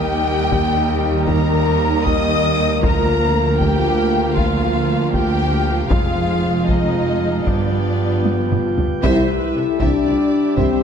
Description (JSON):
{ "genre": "cinematic, epic orchestral film score", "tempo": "78 BPM (dotted quarters)", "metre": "12/8", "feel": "straight", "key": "Eb major", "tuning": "A4 = 440 Hz", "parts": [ { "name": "warm symphonic violin section", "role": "melody", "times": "0.0-10.8 s", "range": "D5 to Eb6", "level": "-24 LUFS", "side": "left 2 dB", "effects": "none" }, { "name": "warm studio violin section", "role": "second line", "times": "0.0-10.8 s", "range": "D4 to E5", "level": "-26 LUFS", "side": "left 5 dB", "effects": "none" }, { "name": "rich studio viola section", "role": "accompaniment", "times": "0.0-10.8 s", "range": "F3 to C5", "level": "-25 LUFS", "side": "right 2 dB", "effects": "none" }, { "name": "dark French horn section", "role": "sustained chords", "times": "0.0-10.8 s", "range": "Ab3 to F4", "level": "-23 LUFS", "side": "left 3 dB", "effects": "none" }, { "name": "pipe organ, flutes", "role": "sustained chords", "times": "0.0-10.8 s", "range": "Bb3 to G5", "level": "-25 LUFS", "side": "right 1 dB", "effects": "none" }, { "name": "rich symphonic double bass section", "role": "bass", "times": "0.0-10.7 s", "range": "F1 to Eb2", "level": "-22 LUFS", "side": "right 2 dB", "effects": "none" }, { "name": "warm symphonic cello section", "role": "bass", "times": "0.0-10.7 s", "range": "D2 to C3", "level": "-24 LUFS", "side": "right 2 dB", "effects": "none" }, { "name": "taiko ensemble", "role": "drums", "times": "0.5-10.8 s", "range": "none", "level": "-22 LUFS", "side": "equal", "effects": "none" }, { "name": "warm trombone section", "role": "sustained chords", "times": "9.0-10.8 s", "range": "G3 to G4", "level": "-26 LUFS", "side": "right 3 dB", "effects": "none" }, { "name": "warm tuba", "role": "bass", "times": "9.0-10.7 s", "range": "C2", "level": "-26 LUFS", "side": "right 3 dB", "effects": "none" } ], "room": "wet scoring stage reverb, RT60 1.7 s", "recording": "dark, warm production", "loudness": "-15 LUFS", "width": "side -7 dB against mid", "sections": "0.0-9.0 A section; 9.0-10.8 B section", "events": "drum fill 8.3-9.0; band accent 9.0-9.6", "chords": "0.0 Eb; 2.8 Bb/D; 5.9 Fm; 7.5 G7; 9.0 C" }